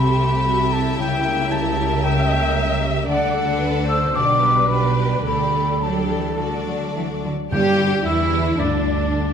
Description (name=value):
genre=classical, dramatic, fast romantic movement for symphony orchestra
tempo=105-116 BPM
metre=4/4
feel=rubato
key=G major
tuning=A4 = 440 Hz
part: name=bright symphonic violin section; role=melody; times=0.0-9.3 s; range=D4 to E5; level=-30 LUFS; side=left 4 dB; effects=none
part: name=mellow concert flute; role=second line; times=0.0-7.2 s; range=F#5 to E6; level=-22 LUFS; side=left 2 dB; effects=none
part: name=warm symphonic violin section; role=second line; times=0.0-9.3 s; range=D4 to A#4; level=-27 LUFS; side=left 3 dB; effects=none
part: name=warm symphonic viola section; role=accompaniment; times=0.0-9.3 s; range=D4 to E5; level=-26 LUFS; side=right 1 dB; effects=none
part: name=concert harp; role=arpeggios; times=0.0-9.3 s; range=G2 to D5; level=-28 LUFS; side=left 9 dB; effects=none
part: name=rich symphonic cello section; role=bass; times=0.0-9.3 s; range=B2 to G3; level=-26 LUFS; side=right 3 dB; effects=none
part: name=warm symphonic double bass section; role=bass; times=0.0-9.3 s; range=B1 to G2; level=-24 LUFS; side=right 4 dB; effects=none
part: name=warm oboe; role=second line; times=7.5-9.3 s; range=D5 to G5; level=-25 LUFS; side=right 1 dB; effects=none
part: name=timpani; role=percussion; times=7.5-8.3 s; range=G2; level=-29 LUFS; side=equal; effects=none
room=moderate concert hall reverb, RT60 1.8 s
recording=none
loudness=-17 LUFS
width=side -7 dB against mid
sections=0.0-7.5 A section; 7.5-9.3 B section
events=none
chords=0.0 Am7/C; 1.0 C#dim7; 3.1 D; 4.2 G/B; 5.3 Dsus4; 6.4 D; 7.5 G5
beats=0.47 | 0.98 1.51 2.03 2.56 | 3.08 3.61 4.15 4.70 | 5.26 5.83 6.39 6.96 | 7.52 8.06 8.59 9.12